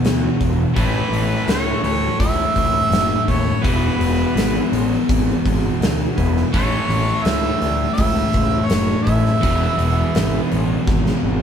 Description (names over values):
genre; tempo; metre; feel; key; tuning
blues rock power trio and southern rock; 83 BPM; 4/4; straight; E major; A4 = 440 Hz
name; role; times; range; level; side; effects
distorted electric guitar; riff; 0.0-11.4 s; E2 to A3; -20 LUFS; left 1 dB; distortion
fuzz picked electric bass; bass; 0.0-11.4 s; E1 to D#2; -22 LUFS; equal; overdrive
huge arena drum kit; drums; 0.0-11.2 s; hi-hat, kick drum, snare drum; -22 LUFS; equal; none
clear harmonica; melody; 0.8-10.4 s; B4 to E5; -22 LUFS; right 2 dB; overdrive
overdriven tonewheel organ; sustained chords; 0.8-10.6 s; B3 to A4; -31 LUFS; right 4 dB; none
room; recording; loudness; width
moderate stone room reverb, RT60 1.2 s; band playing live in one room; -16 LUFS; side -8 dB against mid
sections
0.0-11.4 A section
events
drum fill 10.9-11.4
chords
0.0 E5; 0.8 A; 3.6 E; 6.5 A; 9.4 E